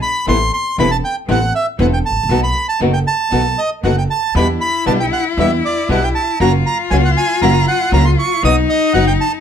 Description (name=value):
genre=tango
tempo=118 BPM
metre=4/4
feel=rubato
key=unclear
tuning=A4 = 442 Hz
part: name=bandoneon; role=melody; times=0.0-9.3 s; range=D5 to D#6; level=-18 LUFS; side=right 3 dB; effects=none
part: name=nylon-string guitar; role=accompaniment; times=0.3-9.0 s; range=B2 to F#4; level=-18 LUFS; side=left 3 dB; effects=none
part: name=rich chamber string section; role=stabs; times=0.3-9.2 s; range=A#3 to A4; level=-26 LUFS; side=right 1 dB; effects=none
part: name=upright bass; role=bass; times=0.3-9.2 s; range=E1 to E2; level=-17 LUFS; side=right 1 dB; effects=none
part: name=clear cello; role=second line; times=4.4-9.4 s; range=D#4 to F4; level=-19 LUFS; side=left 8 dB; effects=none
room=light reverb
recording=none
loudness=-13 LUFS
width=side -8 dB against mid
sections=0.0-9.4 A section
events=none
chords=0.3 Amadd9; 2.3 B7; 4.4 Em7; 6.4 F#; 8.4 B